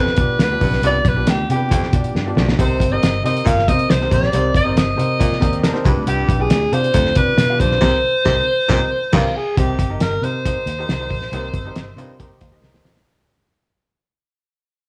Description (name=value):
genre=uptempo 1960s-style soul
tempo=137 BPM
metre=4/4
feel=straight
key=C minor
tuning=A4 = 436 Hz
part: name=breathy alto saxophone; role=melody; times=0.0-12.6 s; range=F4 to F5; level=-22 LUFS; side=equal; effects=slapback echo
part: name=clear upright piano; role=accompaniment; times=0.0-13.0 s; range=C3 to Bb5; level=-28 LUFS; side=equal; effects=none
part: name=warm baritone saxophone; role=riff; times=0.0-13.0 s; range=D2 to C3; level=-26 LUFS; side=equal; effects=none
part: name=vintage muted fingered electric bass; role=bass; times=0.0-13.0 s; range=G1 to C3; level=-23 LUFS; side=equal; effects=none
part: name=cloth-damped thuddy drum kit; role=drums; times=0.1-13.1 s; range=crash cymbal, hi-hat, kick drum, snare drum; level=-21 LUFS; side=equal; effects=none
part: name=direct-recorded clean electric guitar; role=riff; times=5.4-9.3, 12.0-13.0 s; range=Bb3 to C5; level=-31 LUFS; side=equal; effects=none
room=light reverb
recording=studio ambience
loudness=-17 LUFS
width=mono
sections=0.0-9.6 A section; 9.6-13.1 B section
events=drum fill 2.2-2.6, 12.6-13.1; band accent 7.8-9.6; fade-out 9.6-13.1; upright piano fill 12.2-13.1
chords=0.0 G7; 2.6 Cm7; 5.9 G7; 7.8 Cm7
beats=0.40 | 0.84 1.28 1.71 2.15 | 2.59 3.02 3.46 3.90 | 4.33 4.77 5.21 5.64 | 6.08 6.52 6.95 7.39 | 7.83 8.26 8.70 9.14 | 9.57 10.01 10.45 10.88 | 11.32 11.76 12.20 12.63